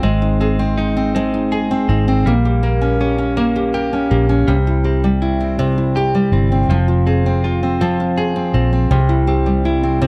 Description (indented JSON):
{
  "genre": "six-eight pop ballad",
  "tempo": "54 BPM (dotted quarters)",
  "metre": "6/8",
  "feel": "straight",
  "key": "F harmonic minor",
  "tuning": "A4 = 445 Hz",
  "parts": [
    { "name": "nylon-string guitar", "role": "accompaniment", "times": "0.0-10.1 s", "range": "C3 to Bb4", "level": "-19 LUFS", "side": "equal", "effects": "none" },
    { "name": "direct-recorded clean electric guitar", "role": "arpeggios", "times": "0.0-10.1 s", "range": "F3 to Ab4", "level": "-26 LUFS", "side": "equal", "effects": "none" },
    { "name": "vintage muted fingered electric bass", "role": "bass", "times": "0.0-10.1 s", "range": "F1 to C2", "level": "-20 LUFS", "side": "equal", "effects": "none" }
  ],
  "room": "light reverb",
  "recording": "dry, close 1970s-style studio recording",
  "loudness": "-16 LUFS",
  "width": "mono",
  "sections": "0.0-10.1 A section",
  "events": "none",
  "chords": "0.0 Ab; 2.3 Gdim/Bb; 4.5 C; 6.7 Fm; 8.9 C",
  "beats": "| 0.04 1.15 | 2.25 3.36 | 4.47 5.58 | 6.69 7.80 | 8.91 10.02"
}